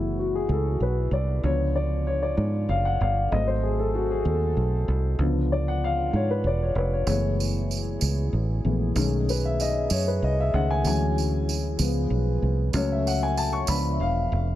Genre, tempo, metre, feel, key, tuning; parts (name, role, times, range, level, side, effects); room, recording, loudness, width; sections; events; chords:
slow gospel; 64 BPM (dotted quarters); 6/8; straight; F# minor; A4 = 440 Hz
dark grand piano; accompaniment; 0.0-14.6 s; D3 to C#6; -26 LUFS; left 3 dB
mellow French horn section; sustained chords; 0.0-14.6 s; F#3 to C#5; -35 LUFS; right 2 dB
fingered electric bass; bass; 0.0-14.6 s; E1 to G#2; -25 LUFS; right 1 dB
tambourine; percussion; 7.1-14.0 s; -34 LUFS; right 8 dB
light reverb, studio reverb; -22 LUFS; side -13 dB against mid
0.0-14.6 A section
grand piano solo 0.0-14.6
0.0 F#m11; 1.4 C#7b9; 3.3 G#7b9; 5.2 C#7b9; 7.1 F#m11; 9.0 B13; 10.8 Dmaj9#11; 11.8 C#7; 12.7 F#m/C#; 13.7 C#7b9